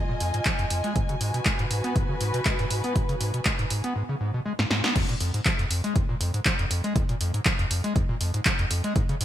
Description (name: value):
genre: acid house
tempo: 120 BPM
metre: 4/4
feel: swing 54% on 16ths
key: unclear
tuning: A4 = 440 Hz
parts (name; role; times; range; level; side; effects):
- overdriven acid bass; riff; 0.0-9.2 s; F2 to Cb4; -27 LUFS; equal; lush chorus
- warm studio string section; texture; 0.0-4.0 s; F4 to Ab5; -32 LUFS; left 1 dB; sidechain pumping
- punchy analog drum machine; drums; 0.2-9.2 s; crash cymbal, handclaps, hi-hat, snare drum; -28 LUFS; equal; gated reverb
- electronic kick drum; drums; 0.5-9.1 s; none; -26 LUFS; equal; none
room: light reverb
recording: bright 1980s-style digital production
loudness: -23 LUFS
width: side -12 dB against mid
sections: 0.0-5.0 A section; 5.0-9.2 B section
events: drum fill 4.6-5.0; drop 5.0-9.2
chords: 0.0 Fm7; 1.0 Abm7; 5.0 Fm